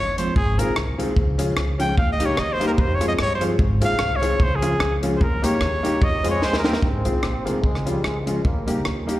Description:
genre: ska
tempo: 148 BPM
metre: 4/4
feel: swing 55% on 8ths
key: Ab major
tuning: A4 = 439 Hz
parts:
  - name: clear trumpet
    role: melody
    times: 0.0-6.8 s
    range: Ab4 to G5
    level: -24 LUFS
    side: equal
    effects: plate reverb, slapback echo
  - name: upright bass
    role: bass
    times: 0.0-9.2 s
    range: G1 to G2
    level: -25 LUFS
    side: equal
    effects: none
  - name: mellow electric guitar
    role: accompaniment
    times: 0.2-9.2 s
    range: Eb3 to Ab4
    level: -29 LUFS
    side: right 1 dB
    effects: wide subtle chorus, slapback echo
  - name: compact cocktail drum kit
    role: drums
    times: 0.2-9.2 s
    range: hi-hat, kick drum, rim click, snare drum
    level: -23 LUFS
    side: equal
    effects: none
  - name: warm upright piano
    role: stabs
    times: 0.6-9.2 s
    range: Bb3 to Ab4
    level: -26 LUFS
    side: left 2 dB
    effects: dub echo, plate reverb, slapback echo
  - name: clear trombone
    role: melody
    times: 6.3-8.8 s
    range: G3 to C4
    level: -29 LUFS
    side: equal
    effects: dub echo, plate reverb, slapback echo
room: light reverb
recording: live gig heard through the venue's PA, recital hall reverb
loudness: -18 LUFS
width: side -15 dB against mid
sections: 0.0-6.8 A section; 6.8-9.2 B section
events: trumpet solo 0.0-6.8; drum fill 6.4-6.8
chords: 0.4 Ab6; 1.2 Db; 2.0 Eb; 2.8 Fm; 3.6 Ab6; 4.4 Db; 5.2 Eb; 6.0 Fm; 6.4 Eb; 6.8 Ab6; 7.6 Db; 8.4 Eb

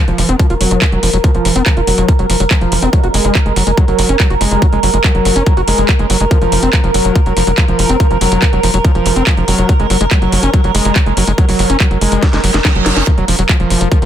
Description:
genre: psychedelic trance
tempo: 142 BPM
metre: 4/4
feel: straight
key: unclear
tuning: A4 = 440 Hz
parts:
  - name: evolving wavetable pad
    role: sustained chords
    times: 0.1-14.1 s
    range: Bb4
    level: -18 LUFS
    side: right 1 dB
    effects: chorus, built-in reverb, sidechain pumping
  - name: screaming distorted acid line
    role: riff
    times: 0.0-14.1 s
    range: F3 to Gb4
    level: -17 LUFS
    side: equal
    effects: distortion, chorus, auto-pan, sidechain pumping, dub echo
  - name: tight sequencer bass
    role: bass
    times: 0.1-14.1 s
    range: F1 to Gb1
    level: -15 LUFS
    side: equal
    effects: none
  - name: drum and bass drum kit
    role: drums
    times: 0.1-14.1 s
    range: handclaps, hi-hat, snare drum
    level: -18 LUFS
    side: equal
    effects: none
  - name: electronic kick drum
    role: drums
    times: 0.4-14.0 s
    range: none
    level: -12 LUFS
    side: equal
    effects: none
  - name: zap and reverse cymbal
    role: sound effects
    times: 2.8-2.9, 12.4-13.1 s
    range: none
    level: -23 LUFS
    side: right 5 dB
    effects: none
room: little or no reverb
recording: dense, heavily limited modern master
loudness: -10 LUFS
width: side -10 dB against mid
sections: 0.0-14.1 A section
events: filter sweep on acid bass 0.0-14.1; drum fill 12.2-13.1; reverse cymbal 12.4-13.1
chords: 0.0 F5; 2.9 Gb5; 6.3 F5; 9.7 Gb5; 13.1 Gbmaj7/F (rootless)

